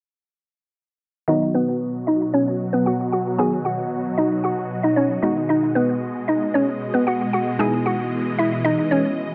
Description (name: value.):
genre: pop.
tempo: 114 BPM.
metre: 4/4.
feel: straight.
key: B major.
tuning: A4 = 440 Hz.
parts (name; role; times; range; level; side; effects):
mallet-like synth pluck; melody; 1.3-9.0 s; B3 to G#5; -23 LUFS; equal; chorus, low-pass filter, slapback echo.
analog pluck; accompaniment; 1.3-9.3 s; D#3 to F#4; -28 LUFS; equal; chorus, low-pass filter.
supersaw chords; sustained chords; 1.3-9.3 s; B2 to D#5; -28 LUFS; equal; phaser, low-pass filter.
room: light reverb.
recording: dry, close 1970s-style studio recording.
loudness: -21 LUFS.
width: mono.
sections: 1.3-9.3 A section.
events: filter sweep 1.3-9.3.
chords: 1.3 B; 7.6 Emaj7.